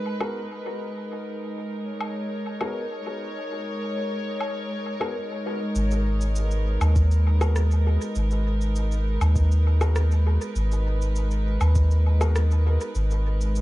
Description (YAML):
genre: ambient dub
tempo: 100 BPM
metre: 4/4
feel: straight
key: G# minor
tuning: A4 = 441 Hz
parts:
  - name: dark studio string section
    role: sustained chords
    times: 0.0-13.6 s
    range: G#3 to C#5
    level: -30 LUFS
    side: right 1 dB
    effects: none
  - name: dark upright piano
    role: stabs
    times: 0.2-12.4 s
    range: B3 to A#4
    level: -35 LUFS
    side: left 2 dB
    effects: low-pass filter, dub echo
  - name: electronic woodblock, shaker and rim click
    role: drums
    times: 0.2-13.6 s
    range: none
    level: -36 LUFS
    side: equal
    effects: studio reverb, dub echo
  - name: soft dub sub bass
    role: bass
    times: 5.8-13.6 s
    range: G#1 to D#2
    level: -20 LUFS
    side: equal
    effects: none
  - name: electronic kick drum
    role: drums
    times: 7.0-11.9 s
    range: none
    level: -25 LUFS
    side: equal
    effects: overdrive, studio reverb
room: little or no reverb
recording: dark, warm production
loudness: -22 LUFS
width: side -18 dB against mid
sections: 0.0-5.8 A section; 5.8-13.6 B section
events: none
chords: 0.0 G#madd9